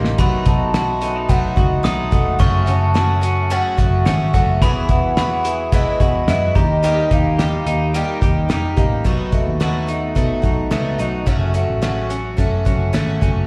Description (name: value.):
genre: jangly indie pop.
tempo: 108 BPM.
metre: 4/4.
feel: straight.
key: B mixolydian.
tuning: A4 = 440 Hz.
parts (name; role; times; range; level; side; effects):
glockenspiel with soft plastic mallets; second line; 0.0-8.7 s; A#5 to D#6; -31 LUFS; equal; slapback echo.
picked twelve-string acoustic guitar; accompaniment; 0.0-13.5 s; F#2 to G#4; -28 LUFS; equal; slapback echo.
electric guitar through a small old amp; arpeggios; 0.0-13.5 s; F#2 to G4; -27 LUFS; equal; slapback echo, analog delay.
vintage muted picked electric bass; bass; 0.0-13.5 s; E1 to B2; -22 LUFS; equal; none.
cloth-damped thuddy drum kit; drums; 0.0-13.3 s; hi-hat, kick drum, snare drum; -21 LUFS; equal; none.
hollow clarinet-like synth lead; melody; 0.5-8.8 s; D#5 to A5; -25 LUFS; equal; chorus, slapback echo.
room: small room ambience.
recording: live gig heard through the venue's PA, club reverb.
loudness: -17 LUFS.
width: mono.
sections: 0.0-9.1 A section; 9.1-13.5 B section.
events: drum fill 0.0.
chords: 0.2 B7; 2.4 F#m; 4.6 Eadd9; 6.6 D#; 9.1 B7; 11.3 F#m.